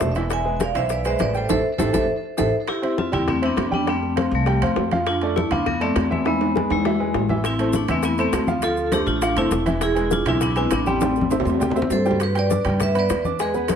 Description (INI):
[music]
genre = latin, salsa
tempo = 202 BPM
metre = 4/4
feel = straight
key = A minor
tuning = A4 = 439 Hz
[part]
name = vibraphone with hard mallets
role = melody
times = 0.0-13.8 s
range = F3 to G#5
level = -22 LUFS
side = left 1 dB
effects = plate reverb, tape echo
[part]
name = clear upright piano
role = accompaniment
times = 0.0-13.8 s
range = E3 to G6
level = -25 LUFS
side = right 2 dB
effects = none
[part]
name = upright bass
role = bass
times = 0.0-13.8 s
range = E1 to G2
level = -26 LUFS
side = equal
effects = none
[part]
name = bongos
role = percussion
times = 0.0-13.8 s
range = none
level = -29 LUFS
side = left 6 dB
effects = none
[part]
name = congas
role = percussion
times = 0.0-13.8 s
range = none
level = -29 LUFS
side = left 2 dB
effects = none
[part]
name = maracas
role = percussion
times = 0.0-2.5, 7.4-13.8 s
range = none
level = -40 LUFS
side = left 7 dB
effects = none
[part]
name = timbales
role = percussion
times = 0.0-13.8 s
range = none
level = -30 LUFS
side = right 7 dB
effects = none
[sound]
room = moderate studio reverb, RT60 0.8 s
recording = none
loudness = -18 LUFS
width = side -8 dB against mid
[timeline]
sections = 0.0-2.7 A section; 2.7-12.2 A section; 12.2-13.8 B section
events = band accent 1.5-2.7; drum fill 1.9-2.7, 6.3-7.4, 11.0-12.2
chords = 0.3 E7; 1.5 Am7; 2.7 Am7 (rootless); 3.9 Fadd9; 5.1 Dmadd9/F; 6.3 E; 7.4 Am; 8.6 Dm7; 9.8 E7; 11.0 Am7; 12.2 G